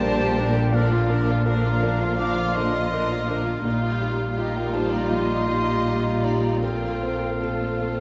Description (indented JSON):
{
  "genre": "cinematic",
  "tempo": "76-84 BPM",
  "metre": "4/4",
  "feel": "rubato",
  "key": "Bb major",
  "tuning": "A4 = 439 Hz",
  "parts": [
    { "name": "rich studio violin section", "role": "melody", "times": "0.0-8.0 s", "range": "F4 to Bb4", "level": "-36 LUFS", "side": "equal", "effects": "none" },
    { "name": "clear oboe", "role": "second line", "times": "0.0-8.0 s", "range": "F5 to G5", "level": "-35 LUFS", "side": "equal", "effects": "none" },
    { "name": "small flute group", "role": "second line", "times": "0.0-8.0 s", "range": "Eb5 to D6", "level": "-34 LUFS", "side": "equal", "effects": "none" },
    { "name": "warm clarinet", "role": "second line", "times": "0.0-8.0 s", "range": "G4 to D5", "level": "-38 LUFS", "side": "equal", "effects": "none" },
    { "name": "warm studio violin section", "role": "second line", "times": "0.0-8.0 s", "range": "G4 to F5", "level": "-36 LUFS", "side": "equal", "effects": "none" },
    { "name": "felt-muted upright piano", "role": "accompaniment", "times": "0.0-8.0 s", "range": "Bb2 to C5", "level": "-31 LUFS", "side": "equal", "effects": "none" },
    { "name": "rich studio viola section", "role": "accompaniment", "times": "0.0-8.0 s", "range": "F3 to F4", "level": "-35 LUFS", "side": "equal", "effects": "none" },
    { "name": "mellow French horn section", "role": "sustained chords", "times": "0.0-8.0 s", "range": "D3 to F4", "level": "-33 LUFS", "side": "equal", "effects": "none" },
    { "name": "clear studio double bass section", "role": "bass", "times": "0.0-8.0 s", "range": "Bb1", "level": "-30 LUFS", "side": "equal", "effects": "none" },
    { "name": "dark studio cello section", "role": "bass", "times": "0.0-8.0 s", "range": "Bb2", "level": "-30 LUFS", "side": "equal", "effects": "none" }
  ],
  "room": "moderate scoring stage reverb, RT60 2.0 s",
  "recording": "nothing above 7.7 kHz",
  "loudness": "-23 LUFS",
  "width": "mono",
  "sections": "0.0-8.0 A section",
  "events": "none",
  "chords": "0.0 Gm/Bb; 0.7 Bb; 3.6 Ebadd9/Bb; 6.6 F/Bb",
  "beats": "0.01 | 0.74 1.46 2.19 2.92 | 3.65 4.37 5.09 5.85 | 6.62 7.41"
}